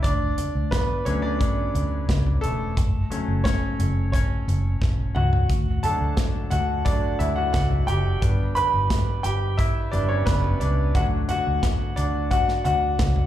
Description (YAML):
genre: piano-driven pop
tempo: 88 BPM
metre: 4/4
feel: straight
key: D major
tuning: A4 = 436 Hz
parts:
  - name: bright baby grand piano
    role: accompaniment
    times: 0.0-13.3 s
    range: F#3 to B5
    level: -25 LUFS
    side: left 1 dB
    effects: slapback echo
  - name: vintage muted fingered electric bass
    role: bass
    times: 0.0-13.3 s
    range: E1 to D2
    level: -24 LUFS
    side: equal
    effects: none
  - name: modern studio drum kit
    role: drums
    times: 0.0-13.3 s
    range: hi-hat, kick drum, snare drum, toms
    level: -25 LUFS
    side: equal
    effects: none
room: light reverb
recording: live gig heard through the venue's PA, club reverb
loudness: -20 LUFS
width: side -12 dB against mid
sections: 0.0-13.3 A section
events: grand piano solo 0.0-13.3; drum fill 4.8-5.5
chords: 0.0 D; 2.8 F#m; 5.5 D; 8.2 G; 11.0 D